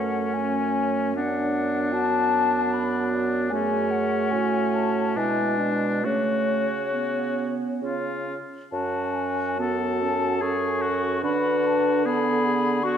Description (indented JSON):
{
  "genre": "classical, slow romantic movement for wind quintet",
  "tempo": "65-79 BPM",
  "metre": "3/4",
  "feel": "rubato",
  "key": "F# minor",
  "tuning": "A4 = 439 Hz",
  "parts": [
    { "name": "mellow hollow silver concert flute", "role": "melody", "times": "0.0-13.0 s", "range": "C#5 to C#6", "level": "-28 LUFS", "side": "left 7 dB", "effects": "none" },
    { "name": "clear oboe", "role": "second line", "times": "0.0-13.0 s", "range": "C#4 to A4", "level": "-30 LUFS", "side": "left 3 dB", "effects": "none" },
    { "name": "mellow clarinet", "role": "accompaniment", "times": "0.0-13.0 s", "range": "G#3 to D4", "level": "-28 LUFS", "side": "right 6 dB", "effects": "none" },
    { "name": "warm French horn", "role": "accompaniment", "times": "0.0-13.0 s", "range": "C#4 to B4", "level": "-28 LUFS", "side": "left 1 dB", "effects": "none" },
    { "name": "warm bassoon", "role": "bass", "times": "0.0-13.0 s", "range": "F#2 to D3", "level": "-29 LUFS", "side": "right 2 dB", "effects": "none" }
  ],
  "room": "wet scoring stage reverb, RT60 1.7 s",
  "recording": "dark, warm production",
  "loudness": "-22 LUFS",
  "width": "side -8 dB against mid",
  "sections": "0.0-13.0 A section",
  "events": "none",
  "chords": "0.0 F#m; 1.1 Bm/F#; 3.5 F#m; 5.2 G#dim/B; 6.0 F#m/C#; 7.8 C#; 8.7 F#m; 11.2 Bm/D",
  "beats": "0.34 | 1.15 1.93 2.73 | 3.52 4.32 5.16 | 6.04 6.94 7.83 | 8.72 9.59 10.42 | 11.23 12.05 12.84"
}